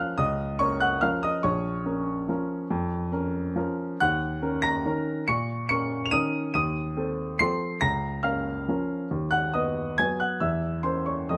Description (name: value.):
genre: classical, piano waltz.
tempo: 141 BPM.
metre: 3/4.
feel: uneven beats, rubato.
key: Bb minor.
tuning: A4 = 439 Hz.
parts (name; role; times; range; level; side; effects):
warm baby grand piano; solo; 0.0-11.4 s; Bb1 to F7; -27 LUFS; equal; none.
room: light reverb.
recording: close, detailed microphones, lossy compression artefacts.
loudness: -27 LUFS.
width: mono.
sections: 0.0-11.4 A section.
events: none.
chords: 0.0 Bbm/Db; 1.4 Bbm; 4.0 Ebm7; 6.5 F7/Eb; 7.8 Bbm/Db; 9.1 B/D#; 10.4 C7b9/E.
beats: | 0.18 0.60 1.02 | 1.44 1.86 2.29 | 2.70 3.12 3.56 | 4.00 4.41 4.85 | 5.27 5.69 6.12 | 6.54 6.96 7.39 | 7.81 8.23 8.68 | 9.11 9.54 9.98 | 10.41 10.84 11.30.